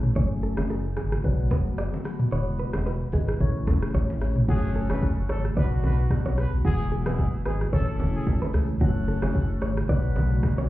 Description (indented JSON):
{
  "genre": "afrobeats",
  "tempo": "111 BPM",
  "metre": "4/4",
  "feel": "swing 55% on 16ths",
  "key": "unclear",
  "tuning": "A4 = 439 Hz",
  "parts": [
    { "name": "tine electric piano", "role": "accompaniment", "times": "0.0-10.6 s", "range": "E3 to C#5", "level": "-32 LUFS", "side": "left 3 dB", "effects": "phaser" },
    { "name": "ethereal airy pad", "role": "sustained chords", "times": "0.0-10.7 s", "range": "C#3 to F#4", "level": "-35 LUFS", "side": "equal", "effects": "ensemble chorus, built-in reverb, tremolo" },
    { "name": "sub bass with octave", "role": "bass", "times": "0.0-10.7 s", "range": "E1 to C#2", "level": "-26 LUFS", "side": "equal", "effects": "none" },
    { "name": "afro-pop drum kit", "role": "drums", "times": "0.0-10.7 s", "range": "crash cymbal, hi-hat, kick drum, rim click, shaker, toms", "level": "-27 LUFS", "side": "equal", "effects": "none" },
    { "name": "direct-recorded clean electric guitar", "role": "riff", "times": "0.2-10.7 s", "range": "F#4 to D5", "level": "-36 LUFS", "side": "right 2 dB", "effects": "ping-pong delay" },
    { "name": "congas and bongos", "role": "percussion", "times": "0.2-10.7 s", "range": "none", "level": "-31 LUFS", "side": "right 1 dB", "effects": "none" },
    { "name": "growling trumpet", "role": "melody", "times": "4.5-8.3 s", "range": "E4 to B4", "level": "-38 LUFS", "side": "right 1 dB", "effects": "ping-pong delay" },
    { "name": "clear horn section", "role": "second line", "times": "4.5-10.7 s", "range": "B3 to B4", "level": "-40 LUFS", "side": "right 2 dB", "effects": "none" },
    { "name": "impact", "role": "sound effects", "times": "4.5-6.6 s", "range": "none", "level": "-34 LUFS", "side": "equal", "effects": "none" }
  ],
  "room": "little or no reverb",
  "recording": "heard muffled through a wall, club reverb, EQ",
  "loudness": "-22 LUFS",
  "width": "side -16 dB against mid",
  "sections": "0.0-4.5 A section; 4.5-10.7 B section",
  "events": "impact 4.5-6.6",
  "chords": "0.2 F#madd9; 1.2 Bm; 2.3 E; 3.4 A; 4.5 F#madd9; 5.6 Bm; 6.6 E; 7.7 A; 8.8 F#madd9; 9.9 Bm",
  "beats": "| 0.16 0.70 1.24 1.78 | 2.32 2.86 3.40 3.94 | 4.49 5.03 5.57 6.11 | 6.65 7.19 7.73 8.27 | 8.81 9.35 9.89 10.43"
}